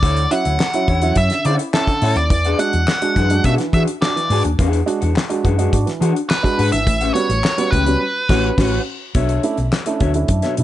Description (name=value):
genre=funk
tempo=105 BPM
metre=4/4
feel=straight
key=unclear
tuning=A4 = 440 Hz
part: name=nasal lead guitar with a parked wah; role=melody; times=0.0-8.8 s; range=A4 to F#5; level=-20 LUFS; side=equal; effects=overdrive, plate reverb
part: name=mellow electric guitar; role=accompaniment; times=0.0-10.6 s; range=C#4 to G#5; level=-24 LUFS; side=left 6 dB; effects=plate reverb
part: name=dark upright piano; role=stabs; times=0.0-10.6 s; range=A2 to F#4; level=-22 LUFS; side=right 4 dB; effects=plate reverb
part: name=hollow-body short-scale fingered electric bass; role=bass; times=0.0-10.6 s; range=G#1 to E3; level=-18 LUFS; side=equal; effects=none
part: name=damped 70s drum kit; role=drums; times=0.0-10.6 s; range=crash cymbal, hi-hat, kick drum, snare drum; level=-21 LUFS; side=equal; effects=none
part: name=group handclap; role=percussion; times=0.6-9.9 s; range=none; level=-28 LUFS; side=left 5 dB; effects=none
room=light reverb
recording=nothing above 10.7 kHz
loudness=-15 LUFS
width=side -13 dB against mid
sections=0.0-9.1 A section; 9.1-10.6 B section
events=band accent 8.0-9.1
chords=0.0 Dmaj9; 2.3 E9; 6.9 A13; 9.1 Bm11